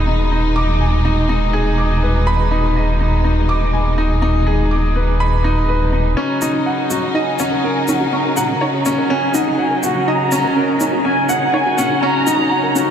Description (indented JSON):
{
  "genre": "piano and strings electronica",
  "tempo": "123 BPM",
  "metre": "4/4",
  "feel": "straight",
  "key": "Eb minor",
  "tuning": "A4 = 440 Hz",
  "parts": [
    { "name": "clear studio string section", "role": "sustained chords", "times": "0.0-12.9 s", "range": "Cb3 to Eb4", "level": "-23 LUFS", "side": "left 1 dB", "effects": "none" },
    { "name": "clear grand piano", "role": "riff", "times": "0.0-12.9 s", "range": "Db4 to D6", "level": "-18 LUFS", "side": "left 1 dB", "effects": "tape echo" },
    { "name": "dark detuned saw bass", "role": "bass", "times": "0.0-12.9 s", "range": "Eb1 to Bb1", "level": "-18 LUFS", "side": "equal", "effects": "high-pass filter" },
    { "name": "warm symphonic violin section", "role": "melody", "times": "6.2-12.8 s", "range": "Gb5 to Bb5", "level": "-20 LUFS", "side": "right 1 dB", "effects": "low-pass filter, tape echo" },
    { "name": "warbly dusty pluck", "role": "arpeggios", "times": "6.2-12.8 s", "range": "Db4 to Bb4", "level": "-23 LUFS", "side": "right 2 dB", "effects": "chorus, tape echo" },
    { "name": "shaker", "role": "drums", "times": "6.4-12.9 s", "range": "none", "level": "-28 LUFS", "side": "left 1 dB", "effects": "overdrive" }
  ],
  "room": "moderate huge ambient reverb, RT60 8.6 s",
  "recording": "dreamy mix soaked in reverb, high-pass filter",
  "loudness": "-14 LUFS",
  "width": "side -9 dB against mid",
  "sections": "0.0-6.2 A section; 6.2-12.9 B section",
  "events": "build-up 6.2-12.9; filter sweep on synth arpeggio sound 6.2-12.9; filter sweep on violin section 6.2-12.9",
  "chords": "0.0 Abm/Eb; 6.2 Ebm7",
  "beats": "| 0.32 0.81 1.30 1.78 | 2.27 2.76 3.25 3.73 | 4.22 4.71 5.20 5.69 | 6.17 6.66 7.15 7.64 | 8.12 8.61 9.10 9.59 | 10.08 10.56 11.05 11.54 | 12.03 12.52"
}